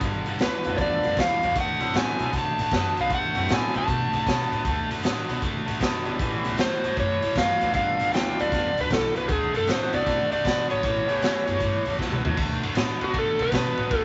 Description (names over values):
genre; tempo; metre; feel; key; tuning
electric blues shuffle; 155 BPM; 4/4; swing 66% on 8ths; D mixolydian; A4 = 445 Hz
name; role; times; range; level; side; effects
cranked stack guitar; riff; 0.0-14.0 s; G2 to B3; -31 LUFS; equal; overdrive
upright bass; bass; 0.0-14.0 s; G1 to C3; -36 LUFS; equal; none
raw garage drum kit; drums; 0.0-14.0 s; crash cymbal, hi-hat, kick drum, ride cymbal, snare drum, toms; -30 LUFS; equal; none
overdriven slide guitar; melody; 0.4-14.0 s; F#4 to A5; -28 LUFS; equal; none
tonewheel organ; accompaniment; 0.6-11.6 s; F3 to G4; -34 LUFS; equal; slow rotary speaker, overdrive
room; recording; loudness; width
moderate small room ambience, RT60 0.5 s; nothing above 7.8 kHz; -25 LUFS; mono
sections
0.0-12.4 A section; 12.4-14.0 B section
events
drum fill 12.0-12.4; electric slide guitar solo 12.4-14.0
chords
0.0 G7; 1.6 D7; 6.2 A7; 7.7 G7; 9.3 D7; 10.8 A7; 12.4 D5